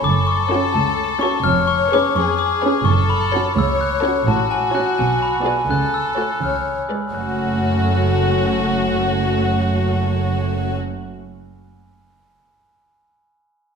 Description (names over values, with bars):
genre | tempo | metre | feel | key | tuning
cinematic, playful, whimsical film cue | 84 BPM (dotted quarters) | 6/8 | straight | F# minor | A4 = 440 Hz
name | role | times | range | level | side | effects
dark studio violin section | melody | 0.0-10.8 s | F#4 to C#5 | -24 LUFS | left 3 dB | none
glockenspiel with soft plastic mallets | melody | 0.0-11.3 s | G#5 to F#6 | -21 LUFS | left 4 dB | none
dark chamber double bass section | bass | 0.0-10.8 s | E#1 to C#2 | -24 LUFS | right 4 dB | none
warm chamber cello section | bass | 0.1-10.8 s | C#2 to C#3 | -23 LUFS | right 2 dB | none
warm chamber violin section | second line | 0.5-10.8 s | F#4 to D5 | -24 LUFS | left 3 dB | none
dark studio viola section | accompaniment | 0.5-10.8 s | G#3 to G#4 | -25 LUFS | right 1 dB | none
room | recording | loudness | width
wet scoring stage reverb, RT60 1.5 s | minimal, uncompressed stereo recording | -16 LUFS | side -6 dB against mid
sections
0.0-7.1 A section; 7.1-10.0 B section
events
none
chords
0.0 F#m; 1.4 C#7/E#; 2.9 F#m; 4.3 F#m/A; 5.0 G#m7b5/B; 5.7 F#m/C#; 6.4 C#7b9; 7.1 F#m